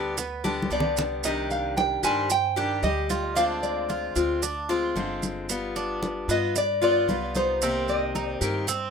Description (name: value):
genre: latin, Cuban son and guajira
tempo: 113 BPM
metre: 4/4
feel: straight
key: C minor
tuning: A4 = 439 Hz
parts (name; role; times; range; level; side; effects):
- picked steel-string acoustic guitar; accompaniment; 0.0-8.7 s; C3 to G4; -28 LUFS; left 4 dB; none
- Cuban tres; arpeggios; 0.0-8.9 s; B3 to C5; -32 LUFS; right 5 dB; none
- upright bass; bass; 0.0-8.9 s; G1 to G2; -34 LUFS; right 1 dB; none
- congas; percussion; 0.2-8.9 s; none; -32 LUFS; left 1 dB; none
- maracas; percussion; 0.2-8.9 s; none; -33 LUFS; right 11 dB; none
- nylon-string guitar; melody; 0.7-8.4 s; C5 to Ab5; -26 LUFS; right 1 dB; tape echo
room: moderate studio reverb, RT60 0.6 s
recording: rough home demo mix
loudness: -23 LUFS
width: side -6 dB against mid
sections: 0.0-8.9 A section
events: drum fill 0.4-1.2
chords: 0.0 G; 1.2 Cmadd9; 3.4 Dm7b5; 5.5 G7; 7.6 Cm7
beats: 0.18 0.71 | 1.24 1.77 2.30 2.83 | 3.37 3.90 4.43 4.96 | 5.49 6.02 6.55 7.09 | 7.62 8.15 8.68